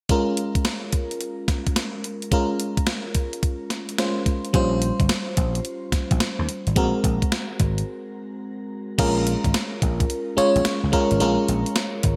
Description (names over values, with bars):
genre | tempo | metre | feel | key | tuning
R&B, new jack swing | 108 BPM | 4/4 | swing 66% on 16ths | Bb minor | A4 = 439 Hz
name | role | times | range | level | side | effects
FM electric piano | accompaniment | 0.1-12.2 s | G3 to Db5 | -27 LUFS | equal | chorus, shimmer reverb
clean 12-bit digital drum machine | drums | 0.1-12.2 s | crash cymbal, hi-hat, kick drum, snare drum | -26 LUFS | equal | gated reverb
vintage slap bass | bass | 4.5-12.2 s | G1 to Eb2 | -26 LUFS | equal | none
room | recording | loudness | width
moderate plate reverb, RT60 1.6 s | bright 1980s-style digital production | -23 LUFS | mono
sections
0.1-9.0 A section; 9.0-12.2 B section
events
break 7.9-9.0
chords
0.1 Bbm7; 4.5 Eb13 (rootless); 6.8 Ab9; 9.0 Bbm7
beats
| 0.09 0.65 1.21 1.76 | 2.32 2.87 3.43 3.98 | 4.54 5.09 5.65 6.21 | 6.76 7.32 7.87 8.43 | 8.98 9.54 10.09 10.65 | 11.21 11.76